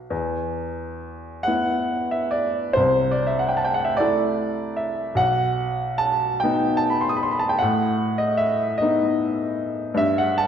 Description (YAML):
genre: classical, romantic nocturne for solo piano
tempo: 42-51 BPM (dotted quarters)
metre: 6/8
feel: rubato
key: E minor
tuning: A4 = 439 Hz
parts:
  - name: bright upright piano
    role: solo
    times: 0.0-10.5 s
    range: B1 to D#6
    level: -20 LUFS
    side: equal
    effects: none
room: wet scoring stage reverb, RT60 1.6 s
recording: dark, warm production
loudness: -20 LUFS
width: side -8 dB against mid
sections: 0.1-10.5 A section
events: none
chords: 0.1 E5; 2.8 Am/C; 5.2 B; 7.6 B7/A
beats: | 0.10 1.46 | 2.77 4.01 | 5.21 6.43 | 7.61 8.81 | 10.01